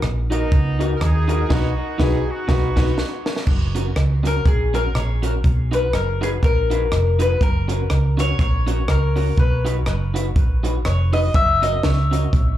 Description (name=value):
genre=ska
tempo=122 BPM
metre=4/4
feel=swing 57% on 8ths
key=F# major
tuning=A4 = 440 Hz
part: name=hollow-body short-scale fingered electric bass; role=bass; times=0.0-12.6 s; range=E#1 to D#2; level=-19 LUFS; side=equal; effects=none
part: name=compact cocktail drum kit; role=drums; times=0.0-12.5 s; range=crash cymbal, hi-hat, kick drum, rim click, snare drum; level=-21 LUFS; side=equal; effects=none
part: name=clear horn section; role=melody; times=0.3-3.3 s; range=B3 to A#4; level=-30 LUFS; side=right 1 dB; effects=dub echo, slapback echo
part: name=electric guitar at the edge of break-up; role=accompaniment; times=0.3-12.2 s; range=C#4 to B4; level=-28 LUFS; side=right 2 dB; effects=slapback echo
part: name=warm upright piano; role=stabs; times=0.3-2.9 s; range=D#4 to B4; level=-28 LUFS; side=left 5 dB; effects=dub echo, slapback echo
part: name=mandolin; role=melody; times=4.3-12.6 s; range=G#4 to E5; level=-23 LUFS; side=left 3 dB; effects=dub echo, slapback echo
room=small room ambience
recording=live gig heard through the venue's PA, club ambience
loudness=-17 LUFS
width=side -12 dB against mid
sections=0.0-3.5 A section; 3.5-12.6 B section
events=band accent 1.5-3.5; drum fill 2.5-3.5; mandolin solo 3.5-12.6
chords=0.0 D#m; 1.5 B; 3.5 F#; 5.4 B; 7.4 F#; 9.4 B; 11.3 F#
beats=0.03 0.52 1.01 | 1.50 2.00 2.49 2.98 | 3.47 3.96 4.46 4.95 | 5.44 5.93 6.42 6.92 | 7.41 7.90 8.39 8.88 | 9.38 9.87 10.36 10.85 | 11.35 11.84 12.33